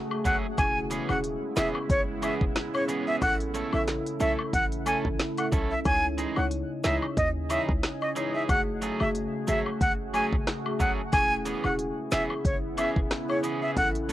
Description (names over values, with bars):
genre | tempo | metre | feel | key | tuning
dancehall | 91 BPM | 4/4 | swing 56% on 16ths | unclear | A4 = 440 Hz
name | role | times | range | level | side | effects
deep dark ambient pad | sustained chords | 0.0-14.1 s | C#3 to D#5 | -35 LUFS | right 1 dB | chorus, built-in reverb, sidechain pumping, cassette tape
marimba with medium mallets | accompaniment | 0.1-14.1 s | A3 to C#5 | -32 LUFS | left 1 dB | cassette tape
woodblock and cabasa | percussion | 0.1-14.1 s | none | -36 LUFS | left 5 dB | none
breathy bright jazz flute | melody | 0.2-13.9 s | C#5 to G#5 | -27 LUFS | equal | cassette tape
electric guitar at the edge of break-up | arpeggios | 0.2-14.1 s | E3 to A4 | -33 LUFS | right 4 dB | cassette tape
short 808-style bass | bass | 0.2-14.1 s | E1 to D#2 | -32 LUFS | equal | none
island pop drum kit | drums | 0.2-14.1 s | hi-hat, kick drum, rim click, snare drum | -29 LUFS | equal | cassette tape
room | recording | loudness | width
light reverb | home recording on cassette | -25 LUFS | side -14 dB against mid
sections
0.0-14.1 A section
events
none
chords
0.0 F#madd9; 0.6 E6; 3.2 A; 5.9 C#madd9; 8.5 F#madd9; 11.1 E6